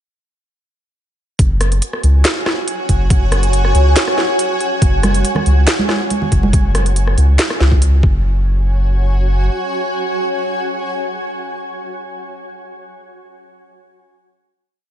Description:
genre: deep dubstep.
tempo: 140 BPM.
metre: 4/4.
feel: half-time.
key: unclear.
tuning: A4 = 439 Hz.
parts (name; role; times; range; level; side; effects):
granular cloud pad; sustained chords; 2.2-11.6 s; F#4 to G#5; -21 LUFS; equal; built-in reverb.
soft dub sub bass; bass; 1.4-9.5 s; F#1 to C#2; -13 LUFS; equal; none.
electronic kick drum; drums; 1.4-8.1 s; none; -14 LUFS; equal; none.
garage drum kit; drums; 1.4-7.9 s; handclaps, hi-hat, rim click, snare drum; -19 LUFS; equal; none.
congas; percussion; 5.0-6.5 s; none; -20 LUFS; right 4 dB; none.
room: little or no reverb.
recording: nothing above 10.9 kHz.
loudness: -13 LUFS.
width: side -11 dB against mid.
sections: 1.4-8.2 drop; 8.2-11.7 final hit.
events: drop 1.4-8.2.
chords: 1.4 F#sus2.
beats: | 1.39 1.82 2.25 2.67 | 3.10 3.53 3.96 4.39 | 4.82 5.25 5.67 6.10 | 6.53 6.96 7.39 7.82 | 8.25 8.68 9.10 9.53 | 9.96 10.39 10.82 11.25.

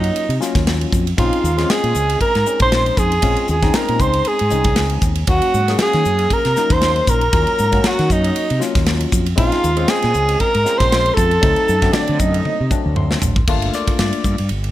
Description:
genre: electric jazz fusion.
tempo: 117 BPM.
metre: 4/4.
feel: swing 55% on 16ths.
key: Eb dorian.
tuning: A4 = 441 Hz.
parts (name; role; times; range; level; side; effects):
breathy alto saxophone; melody; 0.0-12.7 s; D4 to C5; -18 LUFS; equal; none.
concert flute; second line; 0.0-12.7 s; D5 to C6; -24 LUFS; right 5 dB; none.
barky tine electric piano; accompaniment; 0.0-14.5 s; D3 to C6; -23 LUFS; left 5 dB; phaser.
fretless electric bass; bass; 0.0-14.7 s; G1 to Eb3; -19 LUFS; equal; none.
modern studio drum kit; drums; 0.0-14.7 s; crash cymbal, hi-hat, kick drum, ride cymbal, snare drum, toms; -20 LUFS; equal; none.
room: light reverb, small room ambience.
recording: none.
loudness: -14 LUFS.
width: side -14 dB against mid.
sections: 0.0-13.5 A section; 13.5-14.7 B section.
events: drum fill 12.5-13.5; tine electric piano fill 12.7-13.5.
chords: 0.0 Ebm7; 1.2 Bbm11; 5.3 Ebm7; 9.4 Bbm11; 11.4 D7b9; 13.5 Gm9.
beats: 0.15 0.67 | 1.18 1.69 2.21 2.72 | 3.23 3.75 4.26 4.77 | 5.29 5.80 6.31 6.82 | 7.33 7.85 8.36 8.87 | 9.38 9.90 10.41 10.92 | 11.43 11.95 12.46 12.97 | 13.48 14.00 14.51.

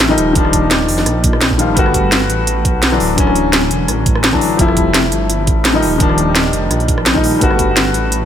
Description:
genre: liquid drum and bass.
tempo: 170 BPM.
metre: 4/4.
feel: straight.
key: unclear.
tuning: A4 = 441 Hz.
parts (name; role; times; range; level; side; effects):
warm baby grand piano; accompaniment; 0.0-8.3 s; D3 to F#4; -15 LUFS; left 2 dB; ping-pong delay.
dark detuned saw bass; bass; 0.0-8.3 s; D1 to B1; -18 LUFS; right 1 dB; none.
drum and bass drum kit; drums; 0.0-8.2 s; hi-hat, rim click, snare drum; -16 LUFS; right 1 dB; none.
electronic kick drum; drums; 0.4-7.7 s; none; -16 LUFS; right 1 dB; none.
room: light reverb, digital ambience.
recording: none.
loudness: -11 LUFS.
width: side -9 dB against mid.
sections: 0.0-1.8 A section; 1.8-8.3 A section.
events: drop 0.0-1.8, 1.8-8.3.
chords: 0.2 Ebmaj9; 1.8 Gmaj9; 3.0 Dmaj9; 4.6 Fmaj9; 5.8 Ebmaj9; 7.4 Gmaj9.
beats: 0.00 | 0.35 0.71 1.06 1.41 | 1.77 2.12 2.47 2.83 | 3.18 3.53 3.88 4.24 | 4.59 4.94 5.30 5.65 | 6.00 6.35 6.71 7.06 | 7.41 7.77 8.12.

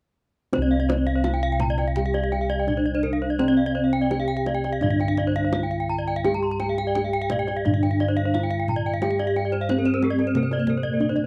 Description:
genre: Balinese gamelan.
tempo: 85 BPM.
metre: 4/4.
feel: uneven beats.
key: C slendro.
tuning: A4 = 440 Hz.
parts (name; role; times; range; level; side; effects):
gamelan-type bronze metallophone; melody; 0.5-11.3 s; Bb3-45c to G4+25c; -28 LUFS; equal; none.
gamelan-type bronze metallophone; accompaniment; 0.5-11.3 s; C3 to Bb3-45c; -35 LUFS; equal; none.
gamelan-type bronze metallophone; arpeggios; 0.5-11.2 s; G4+25c to C6; -32 LUFS; equal; none.
gamelan-type bossed gongs; bass; 0.5-11.3 s; C2 to G4+25c; -29 LUFS; equal; none.
kendang; percussion; 0.5-11.3 s; none; -34 LUFS; equal; none.
gamelan-type bronze metallophone; arpeggios; 0.6-11.3 s; Bb4-45c to Bb5-45c; -32 LUFS; equal; none.
room: small room ambience.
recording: dry, close 1970s-style studio recording.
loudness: -23 LUFS.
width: mono.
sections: 0.5-11.3 A section.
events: drum fill 10.8-11.3.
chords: none.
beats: | 0.53 1.25 1.96 2.68 | 3.39 4.11 4.82 5.53 | 6.25 6.96 7.66 8.34 | 9.02 9.69 10.35 11.00.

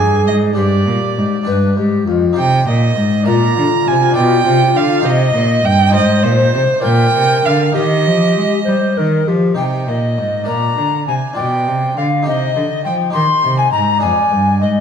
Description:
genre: classical, baroque-style sonata movement with continuo.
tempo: 67 BPM (dotted quarters).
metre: 6/8.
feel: straight.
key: C minor, Eb major from 5.9 s, C minor from 9.6 s.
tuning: A4 = 441 Hz.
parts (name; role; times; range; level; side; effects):
mellow hollow alto recorder; melody; 0.0-14.8 s; F4 to C6; -17 LUFS; left 5 dB; none.
rich violin; second line; 0.0-14.7 s; C5 to C6; -18 LUFS; right 6 dB; none.
harpsichord; accompaniment; 0.0-14.8 s; F2 to D5; -20 LUFS; left 1 dB; none.
rich cello; bass; 0.0-14.8 s; F2 to Ab3; -16 LUFS; right 1 dB; none.
room: wet recital hall reverb, RT60 1.4 s.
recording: dark, warm production.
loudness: -12 LUFS.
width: side -7 dB against mid.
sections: 0.0-9.6 A section; 9.6-14.8 A section.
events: none.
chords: 0.0 D(b5, no3); 0.6 Gsus4; 1.5 G; 2.4 Cm; 3.3 Bb; 4.2 G7/B; 5.1 Cm; 5.9 Fm7/Ab; 6.8 Bb; 7.8 Eb; 9.6 Cm; 10.5 Bb; 11.4 G7/B; 12.3 Cm; 14.0 Ddim/F.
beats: | 0.57 1.48 | 2.39 3.28 | 4.17 5.05 | 5.94 6.84 | 7.75 8.67 | 9.58 10.48 | 11.37 12.26 | 13.14 14.03.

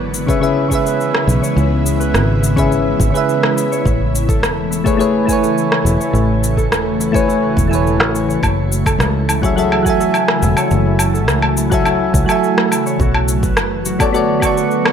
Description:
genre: sunset chillout.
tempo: 105 BPM.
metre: 4/4.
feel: straight.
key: F# minor.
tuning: A4 = 440 Hz.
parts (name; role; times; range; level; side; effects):
ethereal airy pad; sustained chords; 0.0-14.9 s; C#3 to F#4; -20 LUFS; equal; ensemble chorus, built-in reverb, shimmer reverb.
Celtic harp; arpeggios; 0.0-14.9 s; E4 to A5; -24 LUFS; equal; tape echo, shimmer reverb.
fingered electric bass; bass; 0.0-14.6 s; E1 to C#2; -18 LUFS; equal; none.
electronic cabasa, rim click and woodblock; drums; 0.1-14.9 s; none; -19 LUFS; equal; overdrive.
soft electric-piano-like synth keys; accompaniment; 0.3-14.9 s; C#3 to C#6; -17 LUFS; moving between left 5 dB and right 5 dB; chorus, auto-pan, tape echo, shimmer reverb.
electronic kick drum; drums; 0.3-14.5 s; none; -19 LUFS; equal; overdrive.
room: moderate digital room reverb, RT60 1.3 s, digital ambience.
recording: none.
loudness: -13 LUFS.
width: side -8 dB against mid.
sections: 0.0-14.9 A section.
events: none.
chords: 0.0 C#m7; 3.9 Amaj7; 8.4 F#m7; 13.0 Bm7.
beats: 0.43 1.00 | 1.57 2.14 2.71 3.29 | 3.86 4.43 5.00 5.57 | 6.14 6.71 7.29 7.86 | 8.43 9.00 9.57 10.14 | 10.71 11.29 11.86 12.43 | 13.00 13.57 14.14 14.71.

